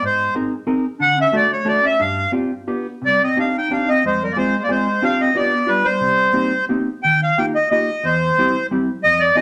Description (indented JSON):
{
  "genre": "musette waltz",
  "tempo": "181 BPM",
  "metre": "3/4",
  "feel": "rubato",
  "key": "C minor",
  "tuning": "A4 = 436 Hz",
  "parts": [
    { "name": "accordion", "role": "melody", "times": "0.0-9.4 s", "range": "Bb4 to G5", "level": "-18 LUFS", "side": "equal", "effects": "none" },
    { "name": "mellow clarinet", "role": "second line", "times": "0.0-6.7 s", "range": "G3 to Eb4", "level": "-27 LUFS", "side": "equal", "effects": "none" },
    { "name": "hollow-body jazz guitar", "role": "accompaniment", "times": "0.0-9.4 s", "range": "E2 to Bb4", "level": "-24 LUFS", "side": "equal", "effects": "none" }
  ],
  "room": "wet club reverb, RT60 0.8 s",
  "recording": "none",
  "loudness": "-18 LUFS",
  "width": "mono",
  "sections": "0.0-7.0 A section; 7.0-9.4 B section",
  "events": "none",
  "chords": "0.0 Abadd9; 1.0 D; 2.0 G7sus4; 2.7 G7; 3.0 Cmadd9; 4.0 Fm; 5.0 G7sus4; 5.4 G7; 6.0 Cm7; 7.0 Ebadd9; 8.0 C/E",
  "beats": "| 0.03 0.35 0.68 | 1.00 1.33 1.67 | 2.00 2.33 2.67 | 3.02 3.36 3.70 | 4.04 4.37 4.70 | 5.03 5.36 5.69 | 6.02 6.36 6.70 | 7.05 7.39 7.72 | 8.05 8.38 8.71 | 9.03 9.36"
}